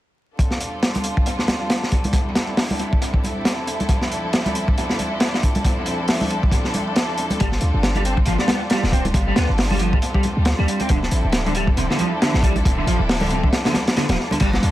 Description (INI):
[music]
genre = breakbeat, breaks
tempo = 137 BPM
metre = 4/4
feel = swing 57% on 16ths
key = D minor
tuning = A4 = 441 Hz
[part]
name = rich studio string section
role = sustained chords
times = 0.4-14.7 s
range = F3 to A4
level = -25 LUFS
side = equal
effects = sidechain pumping
[part]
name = crunchy breakbeat drum kit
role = drums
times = 0.4-14.7 s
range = crash cymbal, hi-hat, kick drum, snare drum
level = -20 LUFS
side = equal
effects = dub echo
[part]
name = congas and bongos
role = percussion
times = 1.0-14.6 s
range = none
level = -29 LUFS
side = equal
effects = dub echo
[part]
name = clean electric guitar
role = riff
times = 7.4-14.5 s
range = C3 to C4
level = -25 LUFS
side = right 1 dB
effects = overdrive, ensemble chorus, dub echo
[part]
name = warm 808-style bass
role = bass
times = 7.4-14.7 s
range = D1 to D2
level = -21 LUFS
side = equal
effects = none
[sound]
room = light reverb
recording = echo-heavy mix, vinyl crackle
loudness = -17 LUFS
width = side -14 dB against mid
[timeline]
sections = 0.4-14.4 A section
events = none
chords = 0.4 G9sus4; 3.9 Dm9; 7.4 G9sus4; 10.9 Dm9